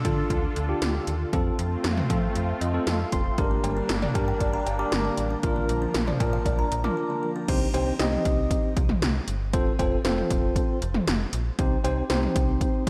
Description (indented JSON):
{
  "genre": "synth-pop",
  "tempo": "117 BPM",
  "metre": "4/4",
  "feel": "straight",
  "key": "C dorian",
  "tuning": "A4 = 439 Hz",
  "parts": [
    { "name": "tine electric piano", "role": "accompaniment", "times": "0.0-12.8 s", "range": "C4 to C6", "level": "-31 LUFS", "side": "equal", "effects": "slapback echo, shimmer reverb" },
    { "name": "lush unison pad", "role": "sustained chords", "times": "0.0-7.5 s", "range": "D3 to A4", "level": "-35 LUFS", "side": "equal", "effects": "chorus, phaser, shimmer reverb" },
    { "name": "slap-like FM bass", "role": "bass", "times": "0.0-12.9 s", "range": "F1 to F3", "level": "-31 LUFS", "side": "equal", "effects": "none" },
    { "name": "80s electronic pad drums", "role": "drums", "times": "0.0-12.9 s", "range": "cowbell, crash cymbal, hi-hat, kick drum, snare drum, toms", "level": "-29 LUFS", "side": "equal", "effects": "gated reverb on snare and toms" },
    { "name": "kalimba", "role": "arpeggios", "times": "3.4-7.4 s", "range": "D3 to D6", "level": "-36 LUFS", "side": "equal", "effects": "slapback echo, shimmer reverb" }
  ],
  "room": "moderate lush hall reverb, RT60 1.9 s, digital ambience",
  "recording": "big arena sound",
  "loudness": "-25 LUFS",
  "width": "mono",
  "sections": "0.0-7.5 A section; 7.5-12.9 B section",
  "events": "tine electric piano fill 2.4-3.4; break 7.0-7.5",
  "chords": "0.0 Dm; 1.3 F; 3.4 Gm; 5.4 Bb; 7.5 Cm; 9.5 F; 11.6 Cm"
}